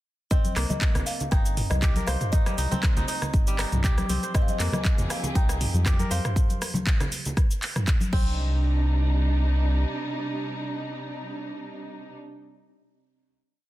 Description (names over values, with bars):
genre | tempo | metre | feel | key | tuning
afro house | 119 BPM | 4/4 | swing 54% on 16ths | C minor | A4 = 440 Hz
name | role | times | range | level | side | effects
kalimba | melody | 0.3-12.1 s | C5 to G5 | -36 LUFS | left 3 dB | digital delay
kora | arpeggios | 0.3-9.9 s | G3 to C5 | -34 LUFS | right 1 dB | sidechain pumping, digital delay
electronic kick drum | drums | 0.3-8.2 s | none | -22 LUFS | equal | none
house drum kit | drums | 0.3-8.2 s | cabasa, crash cymbal, handclaps, hi-hat, rim click, toms | -30 LUFS | right 1 dB | soft clipping on snare
congas | percussion | 0.4-8.2 s | none | -32 LUFS | left 1 dB | none
round analog bass | bass | 0.6-9.9 s | G1 to F2 | -24 LUFS | equal | tube saturation, sidechain pumping
dark studio string section | sustained chords | 4.3-12.2 s | C3 to Ab4 | -32 LUFS | right 1 dB | vintage 12-bit sampler grit, sidechain pumping
room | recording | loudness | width
studio reverb | dense, heavily limited modern master | -22 LUFS | side -16 dB against mid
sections
0.3-8.4 drop; 8.4-12.4 final hit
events
drop 0.3-8.4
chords
0.3 Cm7; 4.3 Fm7; 8.1 Cm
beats
| 0.31 0.81 1.32 1.82 | 2.33 2.83 3.34 3.84 | 4.34 4.85 5.35 5.86 | 6.36 6.87 7.37 7.87 | 8.38 8.88 9.39 9.89 | 10.39 10.90 11.40 11.91